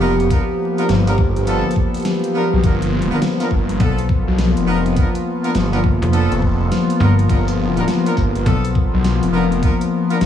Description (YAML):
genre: glitch hop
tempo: 103 BPM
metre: 4/4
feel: swing 63% on 16ths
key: unclear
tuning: A4 = 440 Hz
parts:
  - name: warm analog pad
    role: sustained chords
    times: 0.0-10.3 s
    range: F3 to G4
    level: -20 LUFS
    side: left 2 dB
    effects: chorus, sidechain pumping
  - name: clear horn section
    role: stabs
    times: 0.0-10.2 s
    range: B3 to A#4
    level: -24 LUFS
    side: right 1 dB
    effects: sidechain pumping, analog delay
  - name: phased detuned saw bass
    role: bass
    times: 0.0-10.3 s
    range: F1 to B1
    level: -18 LUFS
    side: equal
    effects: phaser
  - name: dubstep drum kit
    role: drums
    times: 0.2-10.3 s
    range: hi-hat, snare drum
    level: -26 LUFS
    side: left 2 dB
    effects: small room reverb
  - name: electronic kick drum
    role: drums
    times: 0.3-9.8 s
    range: none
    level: -18 LUFS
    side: equal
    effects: small room reverb
  - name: slap-like FM bass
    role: bass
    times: 3.8-8.9 s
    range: F1 to B1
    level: -15 LUFS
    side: equal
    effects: none
room: moderate plate reverb, RT60 2.8 s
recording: dreamy mix soaked in reverb, vinyl crackle, studio ambience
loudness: -14 LUFS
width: side -9 dB against mid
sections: 0.0-10.3 A section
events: none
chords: 0.0 G7#9